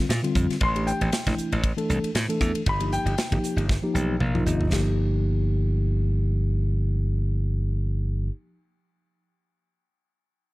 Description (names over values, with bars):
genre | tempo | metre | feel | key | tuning
electric jazz fusion | 117 BPM | 4/4 | swing 55% on 16ths | unclear | A4 = 441 Hz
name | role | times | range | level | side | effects
mellow tine electric piano | accompaniment | 0.0-8.3 s | D3 to G5 | -28 LUFS | left 1 dB | medium stereo tremolo, plate reverb
glassy slap bass | bass | 0.1-8.3 s | G1 to Bb2 | -24 LUFS | equal | none
modern studio drum kit | drums | 0.1-4.9 s | hi-hat, kick drum, ride cymbal, snare drum, toms | -27 LUFS | equal | none
warm grand piano | melody | 0.6-3.7 s | G5 to C6 | -30 LUFS | left 2 dB | plate reverb
room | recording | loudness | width
light reverb | none | -22 LUFS | side -20 dB against mid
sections
0.0-4.7 A section; 4.7-8.8 B section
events
grand piano solo 0.0-4.7; drum fill 3.7-4.7; tine electric piano fill 3.7-4.7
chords
0.0 Bbadd9; 0.6 A7(no3); 2.7 Gm7b13; 4.7 Ebadd9/G